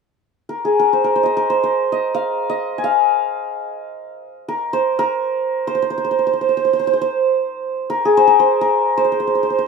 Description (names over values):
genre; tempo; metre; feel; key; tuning
indian classical; free time; none; none; unclear; A4 = 439 Hz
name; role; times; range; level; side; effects
santur; solo; 0.5-9.7 s; Ab4 to Ab5; -16 LUFS; equal; none
room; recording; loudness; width
light reverb; close, detailed microphones; -15 LUFS; side -4 dB against mid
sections
0.0-9.7 A section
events
none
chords
none